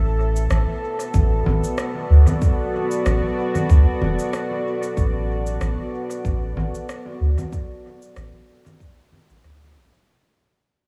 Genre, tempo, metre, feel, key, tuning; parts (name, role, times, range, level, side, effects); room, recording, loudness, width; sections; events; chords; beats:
ambient dub; 94 BPM; 4/4; swing 55% on 16ths; A4 = 440 Hz
deep dark ambient pad; sustained chords; 0.0-10.1 s; B3 to E5; -28 LUFS; equal; chorus, built-in reverb
soft dub sub bass; bass; 0.0-9.9 s; E1 to D2; -20 LUFS; equal
electronic cabasa, rim click and congas; drums; 0.4-10.1 s; -32 LUFS; equal; dub echo
electronic kick drum; drums; 1.1-8.9 s; -23 LUFS; equal
light reverb; -21 LUFS; mono
0.0-10.1 A section
fade-out 3.3-10.1
0.0 Bm7
0.51 1.14 1.78 | 2.42 3.06 3.70 4.33 | 4.97 5.61 6.25 6.89 | 7.53 8.16 8.80 9.44